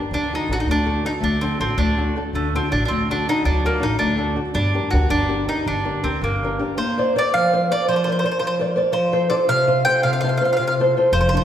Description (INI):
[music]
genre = italian folk, Italian serenade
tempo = 109 BPM (dotted quarters)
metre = 6/8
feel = straight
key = G harmonic minor, Bb major from 6.8 s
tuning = A4 = 439 Hz
[part]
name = nylon-string guitar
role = accompaniment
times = 0.0-11.4 s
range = C3 to D5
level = -20 LUFS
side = left 1 dB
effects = none
[part]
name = mandolin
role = melody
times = 0.1-11.4 s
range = A3 to G5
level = -22 LUFS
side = right 1 dB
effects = none
[part]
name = upright bass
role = bass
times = 0.1-6.6, 11.1-11.4 s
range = F1 to D2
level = -23 LUFS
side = equal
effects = none
[sound]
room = wet recital hall reverb, RT60 1.4 s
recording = recorded in a church or concert hall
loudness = -17 LUFS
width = side -10 dB against mid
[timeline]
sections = 0.0-6.8 A section; 6.8-11.4 B section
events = none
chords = 0.1 D; 4.6 Gm; 6.8 Bbadd9; 8.9 F